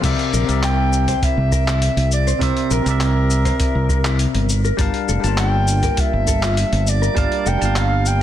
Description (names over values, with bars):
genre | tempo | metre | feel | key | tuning
sunset chillout | 101 BPM | 4/4 | straight | unclear | A4 = 442 Hz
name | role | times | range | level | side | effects
bell-like tine electric piano | accompaniment | 0.0-8.2 s | C3 to A5 | -23 LUFS | moving between left 7 dB and right 8 dB | auto-pan, digital delay
mellow electric guitar | arpeggios | 0.0-7.7 s | E4 to C5 | -29 LUFS | left 2 dB | phaser, digital delay
fingered electric bass | bass | 0.0-8.2 s | F1 to C2 | -18 LUFS | equal | none
dusty soul sampler-style drum kit | drums | 0.0-8.2 s | cabasa, crash cymbal, handclaps, hi-hat | -26 LUFS | left 2 dB | soft clipping on snare
electronic kick drum | drums | 0.0-7.3 s | none | -21 LUFS | equal | none
breathy soprano saxophone | melody | 0.6-8.2 s | Bb4 to G5 | -23 LUFS | equal | digital delay
room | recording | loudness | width
light reverb, digital ambience | dense, heavily limited modern master | -15 LUFS | side -11 dB against mid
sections
0.0-8.2 A section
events
none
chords
0.0 C7; 4.5 Gm9